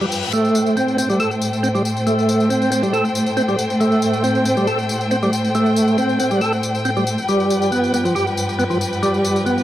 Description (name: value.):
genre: breakbeat, breaks.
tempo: 138 BPM.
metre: 4/4.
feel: straight.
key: A minor.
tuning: A4 = 440 Hz.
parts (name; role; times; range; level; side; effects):
warm chamber string section; sustained chords; 0.0-9.6 s; G2 to G5; -20 LUFS; equal; low-pass filter.
percussive tonewheel organ; riff; 0.0-9.6 s; F3 to A4; -18 LUFS; right 1 dB; overdrive, chorus vibrato, slow rotary speaker, tube saturation, low-pass filter, dub echo.
tambourine; drums; 0.0-9.6 s; none; -30 LUFS; left 4 dB; none.
room: light reverb.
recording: vinyl crackle.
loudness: -16 LUFS.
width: side -13 dB against mid.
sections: 0.0-9.6 A section.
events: filter sweep on tonewheel organ 0.0-9.6; filter sweep on string section 0.0-9.6.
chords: 0.3 Am7; 7.3 G7.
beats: | 0.33 0.77 1.20 1.64 | 2.07 2.51 2.94 3.38 | 3.81 4.25 4.68 5.12 | 5.55 5.98 6.42 6.85 | 7.29 7.72 8.16 8.59 | 9.03 9.46.